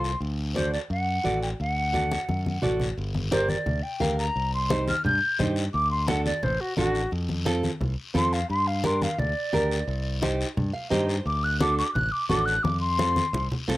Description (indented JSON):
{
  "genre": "latin, cumbia",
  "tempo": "174 BPM",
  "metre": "4/4",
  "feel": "straight",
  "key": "G minor",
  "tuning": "A4 = 440 Hz",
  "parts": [
    { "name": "concert flute", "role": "melody", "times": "0.0-13.5 s", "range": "F#4 to G6", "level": "-27 LUFS", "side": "equal", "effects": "cassette tape" },
    { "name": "nylon-string guitar", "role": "accompaniment", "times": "0.0-13.8 s", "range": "C4 to F5", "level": "-28 LUFS", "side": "right 2 dB", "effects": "cassette tape" },
    { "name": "modern bright fingered electric bass", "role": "bass", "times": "0.0-13.8 s", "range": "G1 to G2", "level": "-28 LUFS", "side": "equal", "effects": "none" },
    { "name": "guiro", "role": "percussion", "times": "0.0-13.8 s", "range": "none", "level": "-38 LUFS", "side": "left 5 dB", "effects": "none" },
    { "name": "congas", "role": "percussion", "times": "0.2-13.8 s", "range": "none", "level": "-30 LUFS", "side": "left 2 dB", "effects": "none" }
  ],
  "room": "moderate studio reverb, RT60 0.6 s",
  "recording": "home recording on cassette",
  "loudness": "-23 LUFS",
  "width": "side -17 dB against mid",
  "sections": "0.0-3.0 A section; 3.0-13.8 B section",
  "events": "drum fill 2.1-3.0, 12.6-13.8; flute solo 3.0-13.8; nylon-string guitar fill 10.6-11.3",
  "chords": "0.2 D; 3.0 Gm; 4.4 Cm; 5.7 D; 7.1 F; 8.5 Gm; 9.9 Cm; 11.3 D; 12.6 F"
}